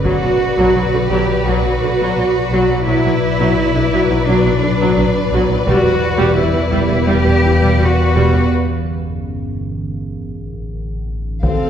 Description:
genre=cinematic, suspense film score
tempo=85 BPM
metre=4/4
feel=straight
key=B minor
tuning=A4 = 438 Hz
part: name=clear chamber cello section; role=bass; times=0.0-11.7 s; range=C4 to G4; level=-18 LUFS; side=right 1 dB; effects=none
part: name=rich chamber double bass section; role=bass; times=0.0-11.7 s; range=E1 to D2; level=-21 LUFS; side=right 2 dB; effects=none
part: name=metallic inharmonic drone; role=drone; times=0.0-11.7 s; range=G1 to E2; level=-19 LUFS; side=left 1 dB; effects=chorus, built-in reverb, phaser
part: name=rich studio violin section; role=melody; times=0.1-11.7 s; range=D5 to F5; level=-26 LUFS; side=left 4 dB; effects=none
part: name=rich chamber violin section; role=second line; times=0.1-11.7 s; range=B4 to C5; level=-23 LUFS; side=left 3 dB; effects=none
part: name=rich chamber viola section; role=accompaniment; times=0.1-11.7 s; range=D3 to A4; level=-19 LUFS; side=equal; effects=none
part: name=solo taiko drums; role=drums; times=0.1-1.4, 5.7-7.1, 11.4-11.7 s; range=none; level=-23 LUFS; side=equal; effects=none
part: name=mellow French horn section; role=sustained chords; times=11.4-11.7 s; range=A4 to F5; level=-20 LUFS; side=left 2 dB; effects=none
room=wet scoring stage reverb, RT60 2.1 s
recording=heard from further back in the room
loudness=-13 LUFS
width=side -9 dB against mid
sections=0.0-11.4 A section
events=break 8.5-11.4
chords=0.0 Bm; 5.7 Em7; 8.5 N.C.

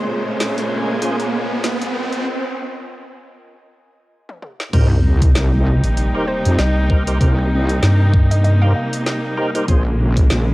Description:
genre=glitch hop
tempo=97 BPM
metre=4/4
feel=swing 57% on 16ths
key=C phrygian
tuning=A4 = 440 Hz
part: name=rich studio string section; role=sustained chords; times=0.0-10.5 s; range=Bb2 to C5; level=-23 LUFS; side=equal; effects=sidechain pumping, cassette tape
part: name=riser and sub drop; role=sound effects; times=0.0-7.2 s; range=none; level=-22 LUFS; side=equal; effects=none
part: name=airy breathy pad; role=texture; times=0.0-9.7 s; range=C4 to Ab5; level=-33 LUFS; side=equal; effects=chorus, sidechain pumping, cassette tape
part: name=drum and bass drum kit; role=drums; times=0.4-10.4 s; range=crash cymbal, hi-hat, rim click, snare drum, toms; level=-26 LUFS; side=equal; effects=overdrive, studio reverb, cassette tape
part: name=percussive tonewheel organ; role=stabs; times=1.0-9.8 s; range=Db4 to C5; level=-26 LUFS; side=equal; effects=overdrive, chorus vibrato, slow rotary speaker, vintage 12-bit sampler grit, sidechain pumping, cassette tape, analog delay
part: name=wobble bass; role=bass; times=4.7-10.5 s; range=Bb1 to F2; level=-16 LUFS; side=equal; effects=chorus
part: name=electronic kick drum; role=drums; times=4.7-10.3 s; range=none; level=-15 LUFS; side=equal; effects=studio reverb, cassette tape
part: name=rubbery square bass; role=bass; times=5.8-8.7 s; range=Bb1 to G2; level=-14 LUFS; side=equal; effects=none
part: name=woody wave-folded pluck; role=melody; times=6.3-8.9 s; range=C5 to F5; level=-28 LUFS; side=equal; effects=chorus, cassette tape, analog delay
room=little or no reverb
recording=home recording on cassette, high-pass filter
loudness=-14 LUFS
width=side -19 dB against mid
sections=0.0-4.7 A section; 4.7-10.5 B section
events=build-up 0.0-4.7; riser 0.0-2.3; filter sweep on string section 0.0-4.7; filter sweep 0.0-4.7; break 2.3-4.7; drum fill 4.3-4.7; drop 4.7-10.5; impact 4.7-7.2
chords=0.0 Bbm9; 4.7 Cm7; 9.7 Bbm9

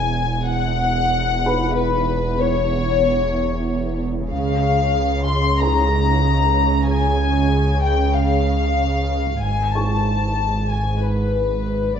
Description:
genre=cinematic, suspense film score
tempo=94 BPM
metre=4/4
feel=straight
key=unclear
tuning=A4 = 440 Hz
part: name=warm studio violin section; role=melody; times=0.0-12.0 s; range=B4 to C6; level=-21 LUFS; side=left 5 dB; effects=none
part: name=dark studio cello section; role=bass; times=0.0-12.0 s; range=E2 to C#3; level=-23 LUFS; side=right 4 dB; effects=none
part: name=rich studio double bass section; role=bass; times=0.0-11.9 s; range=E1 to C#2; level=-25 LUFS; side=right 2 dB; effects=none
part: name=punchy sub bass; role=drone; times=0.0-12.0 s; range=E1 to C#2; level=-24 LUFS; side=equal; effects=none
part: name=felt-muted upright piano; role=texture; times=1.5-12.0 s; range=B4 to C#6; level=-29 LUFS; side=left 1 dB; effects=none
room=moderate scoring stage reverb, RT60 1.9 s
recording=nothing above 7.8 kHz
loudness=-17 LUFS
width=side -8 dB against mid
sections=0.0-12.0 A section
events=none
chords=0.0 Esus2; 4.3 C#; 9.4 G#m

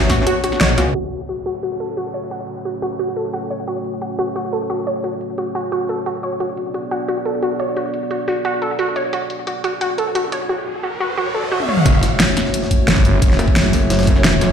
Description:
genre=dark technical drum and bass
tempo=176 BPM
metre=4/4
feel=straight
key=F# minor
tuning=A4 = 439 Hz
part: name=dark analog pad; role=sustained chords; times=0.0-14.5 s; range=A3 to D5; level=-24 LUFS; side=left 1 dB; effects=chorus, sidechain pumping
part: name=metallic wobble bass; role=bass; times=0.0-0.9, 13.4-14.5 s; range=F#1 to C#2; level=-17 LUFS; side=equal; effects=chorus
part: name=warbly dusty pluck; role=arpeggios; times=0.1-11.7 s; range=F#4 to C#5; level=-21 LUFS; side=equal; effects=chorus, sidechain pumping, ping-pong delay
part: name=dubstep drum kit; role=drums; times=0.1-14.5 s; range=hi-hat, snare drum, toms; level=-19 LUFS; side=equal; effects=overdrive, low-pass filter on hats, low-pass filter on snare, low-pass filter on toms
part: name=electronic kick drum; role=drums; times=0.1-0.2, 11.9-14.1 s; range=none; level=-16 LUFS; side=equal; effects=overdrive
part: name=jungle sampler-style drum kit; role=drums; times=0.1-0.9, 11.9-14.5 s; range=hi-hat, snare drum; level=-28 LUFS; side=equal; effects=none
part: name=downlifter, riser and impact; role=sound effects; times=1.1-3.7, 10.2-13.2 s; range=none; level=-26 LUFS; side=equal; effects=none
part: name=snarling distorted saw bass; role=bass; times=11.9-13.4 s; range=F#1 to G1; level=-17 LUFS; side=equal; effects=distortion, tube saturation
room=moderate plate reverb, RT60 1.2 s, digital ambience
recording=played on a big sound system in a bare room, large studio reverb, low-pass filter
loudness=-17 LUFS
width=side -7 dB against mid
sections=0.9-11.9 A section; 11.9-14.5 B section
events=kick drops out 0.3-0.9; band accent 0.6; filter sweep on drum 0.9-11.9; filter sweep on analog synth pad 0.9-11.9; filter sweep 0.9-11.9; riser 10.2-11.9; drum fill 11.6; drop 11.9-14.5; impact 11.9-13.2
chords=0.0 Bm; 0.9 F#m; 6.4 Bm; 11.9 F#m

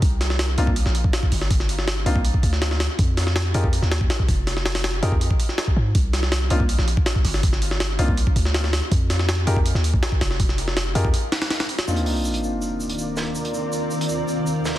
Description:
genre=drum and bass, jungle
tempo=162 BPM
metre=4/4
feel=straight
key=C minor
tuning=A4 = 441 Hz
part: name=warm 808-style bass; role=bass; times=0.0-11.1 s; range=F1 to Ab2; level=-22 LUFS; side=equal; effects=none
part: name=jungle sampler-style drum kit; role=drums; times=0.0-11.9 s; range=hi-hat, kick drum, snare drum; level=-21 LUFS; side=equal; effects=none
part: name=dark baby grand piano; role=stabs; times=0.6-14.8 s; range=Bb3 to Bb4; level=-29 LUFS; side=left 1 dB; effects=dub echo
part: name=granular cloud pad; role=sustained chords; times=12.8-14.8 s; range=Eb3 to D5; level=-24 LUFS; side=equal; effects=built-in reverb, vintage 12-bit sampler grit
part: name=crunchy breakbeat drum kit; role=drums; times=11.9-14.8 s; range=hi-hat, shaker, snare drum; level=-30 LUFS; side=right 2 dB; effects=high-pass filter on hats, high-pass filter on snare, high-pass filter on perc, high-pass filter on room
part: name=sub drop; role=sound effects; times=11.9-13.4 s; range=none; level=-28 LUFS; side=equal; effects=none
room=light reverb, studio ambience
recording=dense, heavily limited modern master, vinyl crackle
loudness=-19 LUFS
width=side -14 dB against mid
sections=0.0-11.9 A section; 11.9-14.8 B section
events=break 11.1-11.9; impact 11.9-13.4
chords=0.0 C7sus2; 3.0 F7(no3); 6.0 C7sus2; 8.9 F7(no3); 11.9 Cm11

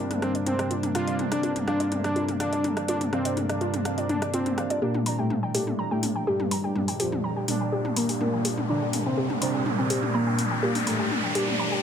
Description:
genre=melodic techno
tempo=124 BPM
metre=4/4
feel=straight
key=G minor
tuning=A4 = 441 Hz
part: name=dark analog pad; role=sustained chords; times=0.0-11.8 s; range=G3 to D5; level=-36 LUFS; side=equal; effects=chorus
part: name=warbly dusty pluck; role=arpeggios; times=0.0-11.8 s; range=F4 to Bb5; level=-32 LUFS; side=equal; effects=chorus, cassette tape, dub echo
part: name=analog synth brass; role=stabs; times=0.0-11.8 s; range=G2 to D4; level=-30 LUFS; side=right 2 dB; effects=chorus, tape echo
part: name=deep house drum kit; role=drums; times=0.1-11.6 s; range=hi-hat, rim click, toms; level=-31 LUFS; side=left 2 dB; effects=overdrive, tape echo
part: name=fat analog lead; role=melody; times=0.2-11.1 s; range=F3 to F4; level=-29 LUFS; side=equal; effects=dub echo
part: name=soft supersaw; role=second line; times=4.8-11.1 s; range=F2 to D3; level=-33 LUFS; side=equal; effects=analog chorus, low-pass filter, tape echo
part: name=riser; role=sound effects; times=6.2-11.8 s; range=none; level=-32 LUFS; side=equal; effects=none
room=moderate plate reverb, RT60 1.5 s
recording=echo-heavy mix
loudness=-24 LUFS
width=side -8 dB against mid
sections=0.0-4.8 A section; 4.8-11.8 B section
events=build-up 4.8-11.8; filter sweep on analog synth lead 4.8-11.8; filter sweep on supersaw synth 4.8-11.8; filter sweep on analog polysynth 4.8-11.8; filter sweep 4.8-11.8; riser 6.2-11.8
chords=0.0 Bbadd9/G; 4.8 Gm

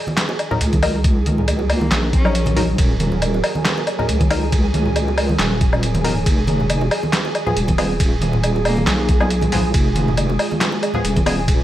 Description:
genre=deep dubstep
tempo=138 BPM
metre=4/4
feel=swing 55% on 16ths, half-time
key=Eb minor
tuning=A4 = 439 Hz
part: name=deep dark ambient pad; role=sustained chords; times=0.4-11.6 s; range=Gb3 to Bb4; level=-28 LUFS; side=right 1 dB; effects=chorus, built-in reverb
part: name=flickering grainy texture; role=texture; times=0.0-11.6 s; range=Ab4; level=-27 LUFS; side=right 3 dB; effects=built-in reverb
part: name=congas and bongos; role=percussion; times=0.1-11.2 s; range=none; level=-24 LUFS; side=right 1 dB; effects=none
part: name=trip hop sampler-style drum kit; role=drums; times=0.2-11.6 s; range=handclaps, hi-hat, ride cymbal, snare drum, woodblock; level=-22 LUFS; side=equal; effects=small room ambience
part: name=filtered dub chord stab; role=stabs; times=0.5-11.4 s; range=F3 to Bb4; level=-26 LUFS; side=left 3 dB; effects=chorus, dub echo
part: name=deep soft wobble bass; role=bass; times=0.6-11.6 s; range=Eb1 to Db2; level=-20 LUFS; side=equal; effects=chorus
part: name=electronic kick drum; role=drums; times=0.7-11.6 s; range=none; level=-18 LUFS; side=equal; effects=small room ambience
part: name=dark cello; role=melody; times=1.7-2.6, 8.7-9.0 s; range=Bb3 to Db4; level=-28 LUFS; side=left 1 dB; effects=dub echo
room=light reverb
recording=vinyl crackle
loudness=-15 LUFS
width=side -13 dB against mid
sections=0.0-11.6 A section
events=none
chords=0.0 Ebm; 6.3 Fdim

